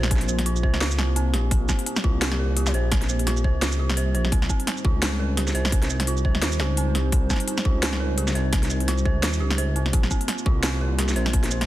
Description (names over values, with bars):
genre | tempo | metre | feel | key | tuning
half-time drum and bass | 171 BPM | 4/4 | swing 57% on 16ths, half-time | C phrygian | A4 = 443 Hz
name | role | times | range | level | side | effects
dark analog pad | sustained chords | 0.0-11.7 s | G3 to C5 | -32 LUFS | left 1 dB | chorus, vintage 12-bit sampler grit, sidechain pumping
dark detuned synth bell | arpeggios | 0.0-11.7 s | C4 to C5 | -31 LUFS | right 4 dB | chorus, dub echo
dark detuned saw bass | bass | 0.0-11.7 s | Bb1 to Eb2 | -24 LUFS | equal | none
drum and bass drum kit | drums | 0.0-11.7 s | hi-hat, shaker, snare drum | -26 LUFS | equal | small room ambience
electronic kick drum | drums | 0.1-11.4 s | none | -22 LUFS | equal | small room ambience
room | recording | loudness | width
digital ambience | dense, heavily limited modern master | -20 LUFS | side -15 dB against mid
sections
0.0-11.7 A section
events
none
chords
0.0 Bb5; 4.3 Cm; 9.9 Bb5